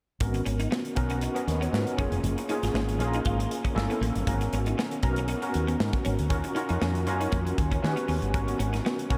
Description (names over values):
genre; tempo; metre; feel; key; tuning
polished 1980s jazz-funk pop; 118 BPM; 4/4; swing 54% on 16ths; G# dorian; A4 = 442 Hz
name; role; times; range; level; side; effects
overdriven tine electric piano; accompaniment; 0.2-9.2 s; A#3 to D#5; -32 LUFS; equal; medium tremolo, tube saturation, ensemble chorus
woody fretless electric bass; bass; 0.2-9.2 s; E#1 to D#3; -31 LUFS; equal; none
modern studio drum kit; drums; 0.2-9.2 s; hi-hat, kick drum, snare drum; -34 LUFS; equal; none
clean electric guitar; riff; 0.3-9.1 s; Bb3 to E#4; -38 LUFS; equal; ensemble chorus
room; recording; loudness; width
moderate huge ambient reverb, RT60 8.4 s; dreamy mix soaked in reverb; -28 LUFS; mono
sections
0.2-9.2 A section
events
none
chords
0.2 G#m11; 2.0 F#maj9 (rootless); 3.8 Gdim7; 4.3 G#m11; 6.3 D#m9; 7.8 D#7alt; 8.3 G#m11